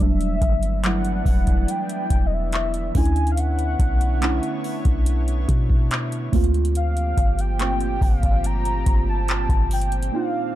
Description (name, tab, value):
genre	contemporary R&B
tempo	71 BPM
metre	4/4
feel	straight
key	unclear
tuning	A4 = 440 Hz
part	warm velvety synth lead	melody	0.0-10.6 s	D#5 to Bb5	-28 LUFS	left 1 dB	chorus, ping-pong delay
part	muted felt-like synth keys	accompaniment	0.0-10.6 s	F3 to F4	-28 LUFS	right 3 dB	chorus
part	lush unison pad	sustained chords	0.5-10.6 s	Bb2 to D5	-32 LUFS	equal	chorus, sidechain pumping
part	warm 808-style bass	bass	0.0-10.1 s	E1 to B2	-22 LUFS	equal	none
part	booming analog drum machine	drums	0.2-10.1 s	handclaps, hi-hat, kick drum	-21 LUFS	equal	none
room	digital ambience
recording	dark, warm production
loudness	-19 LUFS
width	side -14 dB against mid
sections	0.0-10.6 A section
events	drums muted 10.1-10.6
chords	0.0 Em11; 2.9 Bm11; 6.3 Gm11